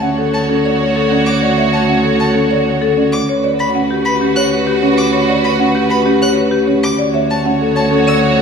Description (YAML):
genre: classical, minimalist pattern music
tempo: 194 BPM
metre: 6/4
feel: straight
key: D major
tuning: A4 = 441 Hz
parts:
  - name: marimba with medium hard mallets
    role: melody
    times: 0.0-8.4 s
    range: G4 to F#5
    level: -17 LUFS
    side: left 7 dB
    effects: none
  - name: rich studio string section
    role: sustained chords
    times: 0.0-8.4 s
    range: F#4 to C#5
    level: -18 LUFS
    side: right 2 dB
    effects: none
  - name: marimba with medium mallets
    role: arpeggios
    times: 0.0-8.3 s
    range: C#4 to C#5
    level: -18 LUFS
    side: right 4 dB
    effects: none
  - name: warm cello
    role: bass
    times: 0.0-8.4 s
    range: D2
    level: -18 LUFS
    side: right 2 dB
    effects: none
  - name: rich violin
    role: arpeggios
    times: 0.3-8.2 s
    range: A5 to F#6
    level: -22 LUFS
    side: left 1 dB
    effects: none
room: wet recital hall reverb, RT60 1.6 s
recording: heard from further back in the room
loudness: -11 LUFS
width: side -6 dB against mid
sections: 0.0-8.4 A section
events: none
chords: 0.0 Dmaj7; 3.3 Gmaj7/D; 7.0 Dmaj7